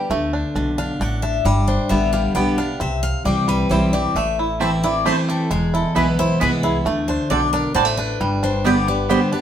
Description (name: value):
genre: bluegrass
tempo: 134 BPM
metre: 3/4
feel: straight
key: unclear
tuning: A4 = 441 Hz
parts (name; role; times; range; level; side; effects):
- bluegrass banjo; melody; 0.0-9.4 s; G3 to G4; -24 LUFS; right 2 dB; none
- picked steel-string acoustic guitar; accompaniment; 0.0-9.4 s; E2 to G4; -22 LUFS; left 1 dB; none
- upright bass; bass; 0.1-9.1 s; E1 to D2; -24 LUFS; equal; none
- picked steel-string acoustic guitar; melody; 0.8-9.4 s; G#4 to G5; -24 LUFS; left 5 dB; none
- mandolin; stabs; 4.6-9.2 s; B3 to A5; -21 LUFS; right 5 dB; none
room: wet studio reverb, RT60 0.8 s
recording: band playing live in one room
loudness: -17 LUFS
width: side -9 dB against mid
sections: 0.0-9.4 A section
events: none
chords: 0.1 D5; 1.5 G; 2.8 C; 4.2 Am; 5.5 E; 6.8 D7; 8.2 G